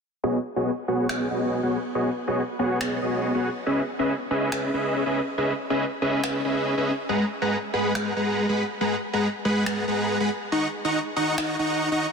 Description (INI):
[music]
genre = future bass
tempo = 140 BPM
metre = 4/4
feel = half-time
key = B major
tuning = A4 = 438 Hz
[part]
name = dense compressed supersaw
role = riff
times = 0.2-12.1 s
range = G#3 to C#6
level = -23 LUFS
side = equal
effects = low-pass filter, dub echo
[part]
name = electronic finger snaps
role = drums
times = 1.1-11.5 s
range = none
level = -36 LUFS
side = equal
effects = overdrive, soft clipping on snare
[sound]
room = moderate shimmer reverb, RT60 5.6 s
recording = dense, heavily limited modern master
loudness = -23 LUFS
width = side -5 dB against mid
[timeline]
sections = 0.2-12.1 A section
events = filter sweep on supersaw synth 0.2-12.1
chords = 0.2 B6; 3.7 C#m9; 7.1 G#m7; 10.3 D#m7